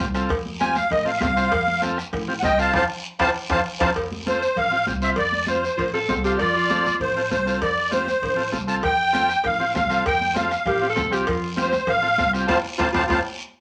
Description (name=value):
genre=latin, cumbia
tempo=197 BPM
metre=4/4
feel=straight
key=F major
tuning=A4 = 440 Hz
part: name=combo organ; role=accompaniment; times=0.0-13.2 s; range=C4 to C5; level=-30 LUFS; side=equal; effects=none
part: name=upright bass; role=bass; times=0.0-13.2 s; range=C2 to A2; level=-33 LUFS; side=equal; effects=none
part: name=bombo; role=percussion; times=0.0-3.9, 8.8-13.2 s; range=none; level=-36 LUFS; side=equal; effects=none
part: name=guiro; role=percussion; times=0.0-13.2 s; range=none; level=-38 LUFS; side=equal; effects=none
part: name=congas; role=percussion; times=0.3-13.2 s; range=none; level=-35 LUFS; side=equal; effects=none
part: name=cowbell and timbales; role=percussion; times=0.3-13.2 s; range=none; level=-31 LUFS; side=equal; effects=none
part: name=musette accordion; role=melody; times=0.6-13.2 s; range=C5 to A5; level=-23 LUFS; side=equal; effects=none
part: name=bright clarinet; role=second line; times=5.8-7.1, 10.7-13.2 s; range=F4 to A4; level=-27 LUFS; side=equal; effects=none
room=moderate studio reverb, RT60 0.5 s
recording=none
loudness=-22 LUFS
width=mono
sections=0.0-4.0 A section; 4.0-13.6 B section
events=accordion solo 0.0-4.0; band accent 2.7-4.0, 12.5-13.6; drum fill 3.0-4.0, 12.8-13.6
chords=0.0 F